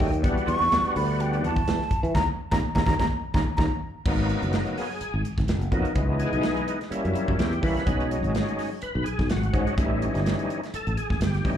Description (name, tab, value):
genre	electric jazz fusion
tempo	126 BPM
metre	4/4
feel	swing 55% on 16ths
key	unclear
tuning	A4 = 440 Hz
part	breathy concert flute	melody	0.0-3.7 s	G5 to C#6	-27 LUFS	right 1 dB	plate reverb, slapback echo, tape echo
part	overdriven tonewheel organ	accompaniment	0.0-11.6 s	E3 to B4	-29 LUFS	left 1 dB	slow rotary speaker, chorus vibrato, plate reverb, slapback echo
part	sustaining fretless electric bass	bass	0.0-11.6 s	F#1 to E3	-26 LUFS	equal	lush chorus
part	modern studio drum kit	drums	0.0-11.6 s	crash cymbal, hi-hat, kick drum, snare drum	-28 LUFS	equal	none
part	congas	percussion	0.0-3.7 s	none	-33 LUFS	right 1 dB	none
room	light reverb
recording	live gig heard through the venue's PA, club reverb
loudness	-23 LUFS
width	side -10 dB against mid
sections	0.0-4.1 A section; 4.1-11.6 A section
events	flute solo 0.0-4.1; band accent 2.1-4.1; drum fill 3.6-4.1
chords	0.2 Em9; 2.1 D#5; 4.1 G#m9; 6.0 C#m9; 6.9 F#7b9; 7.9 B6; 9.8 A7#11